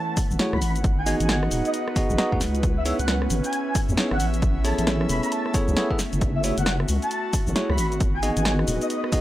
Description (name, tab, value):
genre	UK garage, two-step garage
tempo	134 BPM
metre	4/4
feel	swing 62% on 16ths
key	F# dorian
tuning	A4 = 440 Hz
part	breathy flute-like synth lead	melody	0.0-9.0 s	D#5 to B5	-30 LUFS	equal	ensemble chorus, analog delay
part	ethereal airy pad	sustained chords	0.0-9.2 s	A3 to B4	-36 LUFS	left 2 dB	none
part	airy breathy pad	texture	0.0-9.2 s	E3 to F#5	-31 LUFS	right 2 dB	chorus, sidechain pumping
part	electronic kick drum	drums	0.2-9.2 s	none	-24 LUFS	equal	none
part	punchy analog drum machine	drums	0.2-9.2 s	cabasa, hi-hat, rim click, snare drum	-28 LUFS	equal	none
part	deep soft wobble bass	bass	0.3-8.8 s	D#1 to E2	-24 LUFS	equal	chorus
part	bell-like tine electric piano	stabs	0.4-9.2 s	A3 to F#5	-27 LUFS	equal	analog delay
room	little or no reverb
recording	dry, gritty hardware recording, transformer saturation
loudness	-21 LUFS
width	side -14 dB against mid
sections	0.0-9.2 A section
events	none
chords	0.0 F#m9; 0.6 G#m7; 2.4 C#m7; 4.2 Amaj7; 6.2 F#m9; 7.8 G#m7